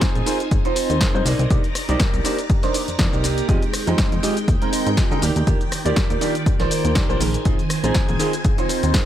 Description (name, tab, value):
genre	filtered disco house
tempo	121 BPM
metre	4/4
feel	swing 55% on 16ths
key	unclear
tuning	A4 = 440 Hz
part	clear concert grand piano	accompaniment	0.0-8.9 s	Ab3 to G5	-24 LUFS	right 2 dB	phaser, sidechain pumping, analog delay
part	phased string machine	sustained chords	0.0-9.1 s	Eb3 to Bb5	-28 LUFS	equal	ensemble chorus, phaser, sidechain pumping
part	semi-hollow electric guitar	riff	0.0-9.1 s	Eb4 to Eb5	-28 LUFS	right 4 dB	sidechain pumping
part	electronic kick drum	drums	0.0-9.1 s	none	-20 LUFS	equal	none
part	punchy analog drum machine	drums	0.0-9.1 s	hi-hat, rim click, shaker, snare drum	-26 LUFS	left 1 dB	analog delay
part	plucky analog bass	bass	0.2-9.0 s	Ab1 to D3	-22 LUFS	equal	sidechain pumping
room	little or no reverb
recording	echo-heavy mix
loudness	-17 LUFS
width	side -11 dB against mid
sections	0.0-9.1 A section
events	none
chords	0.0 Bb9sus4; 1.3 Cm9; 3.5 Fm9; 5.2 Ebmaj7; 7.2 Bb9sus4